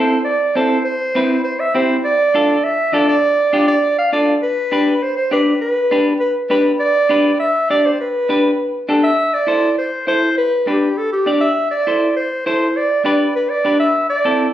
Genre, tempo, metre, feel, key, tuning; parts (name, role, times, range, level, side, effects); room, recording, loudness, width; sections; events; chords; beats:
latin; 202 BPM; 4/4; straight; A minor; A4 = 439 Hz
breathy clarinet; melody; 0.0-14.5 s; G4 to F5; -16 LUFS; right 1 dB
clean electric guitar; accompaniment; 0.0-14.5 s; C4 to D5; -17 LUFS; equal
wet large studio reverb, RT60 0.9 s; recorded on a phone in the room, club reverb; -14 LUFS; side -12 dB against mid
0.0-9.2 A section; 9.2-14.5 B section
0.0 Am; 2.0 Dm; 4.4 G; 9.2 Am; 10.4 G; 11.6 Am; 12.8 G; 14.0 Am
0.26 0.56 | 0.86 1.15 1.45 1.75 | 2.05 2.35 2.64 2.94 | 3.24 3.54 3.83 4.13 | 4.43 4.72 5.02 5.32 | 5.62 5.91 6.21 6.51 | 6.80 7.10 7.40 7.70 | 7.99 8.29 8.59 8.89 | 9.18 9.48 9.78 10.08 | 10.38 10.68 10.97 11.27 | 11.57 11.87 12.17 12.46 | 12.76 13.06 13.36 13.66 | 13.95 14.25